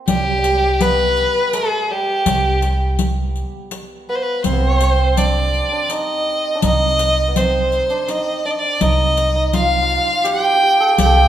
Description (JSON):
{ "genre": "Persian modal ensemble", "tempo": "82 BPM", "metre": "3/4", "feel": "straight", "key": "C avaz esfahan", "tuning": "A4 = 441 Hz", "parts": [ { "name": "santur", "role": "second line", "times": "0.0-11.3 s", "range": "G3 to Ab4+50c", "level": "-23 LUFS", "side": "right 1 dB", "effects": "none" }, { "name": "rich violin", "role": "melody", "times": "0.1-11.3 s", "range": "G4 to G5", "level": "-17 LUFS", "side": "equal", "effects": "none" }, { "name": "upright bass", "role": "bass", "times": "0.1-11.3 s", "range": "C2", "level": "-18 LUFS", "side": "right 1 dB", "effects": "none" }, { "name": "riq", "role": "percussion", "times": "0.1-11.2 s", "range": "none", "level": "-23 LUFS", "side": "left 2 dB", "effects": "none" } ], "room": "moderate concert hall reverb, RT60 2.0 s", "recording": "minimal, uncompressed stereo recording", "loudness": "-14 LUFS", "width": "side -11 dB against mid", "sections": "0.1-11.3 A section", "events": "none", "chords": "none", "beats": "| 0.08 0.81 1.53 | 2.26 2.99 3.72 | 4.44 5.17 5.90 | 6.62 7.35 8.08 | 8.80 9.53 10.26 | 10.98" }